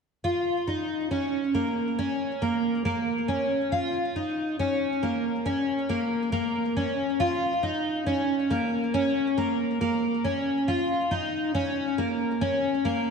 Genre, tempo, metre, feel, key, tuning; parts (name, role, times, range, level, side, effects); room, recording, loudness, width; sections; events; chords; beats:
dream pop; 69 BPM; 4/4; straight; A4 = 440 Hz
fingerpicked twelve-string acoustic guitar; arpeggios; 0.2-13.1 s; Bb3 to F4; -24 LUFS; equal; wide subtle chorus, ping-pong delay
wet concert hall reverb, RT60 1.7 s; dark, warm production; -24 LUFS; side -5 dB against mid
0.2-13.1 A section
| 0.24 1.11 1.98 2.85 | 3.72 4.59 5.46 6.33 | 7.20 8.07 8.94 9.81 | 10.68 11.55 12.42